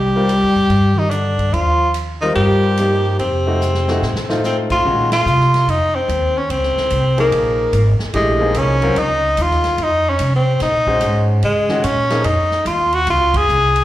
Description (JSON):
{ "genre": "modal jazz", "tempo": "146 BPM", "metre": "4/4", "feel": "swing 65% on 8ths", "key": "Bb minor from 4.8 s", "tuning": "A4 = 440 Hz", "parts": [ { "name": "clear tenor saxophone", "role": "melody", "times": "0.0-13.8 s", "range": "Ab3 to Ab4", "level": "-16 LUFS", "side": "equal", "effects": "slapback echo" }, { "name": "breathy bass clarinet", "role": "second line", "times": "0.0-4.4 s", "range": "C3 to G3", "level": "-20 LUFS", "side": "left 1 dB", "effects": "none" }, { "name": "upright bass", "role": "bass", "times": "0.0-13.8 s", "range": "Ab1 to Db3", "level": "-19 LUFS", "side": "equal", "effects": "none" }, { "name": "clear grand piano", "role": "accompaniment", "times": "0.2-12.2 s", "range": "Eb3 to C5", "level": "-21 LUFS", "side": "left 2 dB", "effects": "slapback echo" }, { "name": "swinging big-band drum kit", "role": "drums", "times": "0.3-13.8 s", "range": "crash cymbal, hi-hat, kick drum, ride cymbal, snare drum", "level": "-29 LUFS", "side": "right 1 dB", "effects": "none" } ], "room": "light reverb, studio reverb", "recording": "live gig heard through the venue's PA, club reverb", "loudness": "-14 LUFS", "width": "side -14 dB against mid", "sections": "0.0-4.8 A section; 4.8-13.8 B section", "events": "drum fill 3.6-4.4; band accent 5.1, 13.3", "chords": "0.0 Cm9; 3.2 F7b9; 4.8 Bbm11", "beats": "0.30 0.72 1.13 | 1.54 1.96 2.37 2.78 | 3.19 3.61 4.02 4.43 | 4.84 5.26 5.67 6.08 | 6.49 6.90 7.32 7.73 | 8.14 8.55 8.96 9.37 | 9.78 10.19 10.61 11.02 | 11.43 11.84 12.25 12.66 | 13.07 13.48" }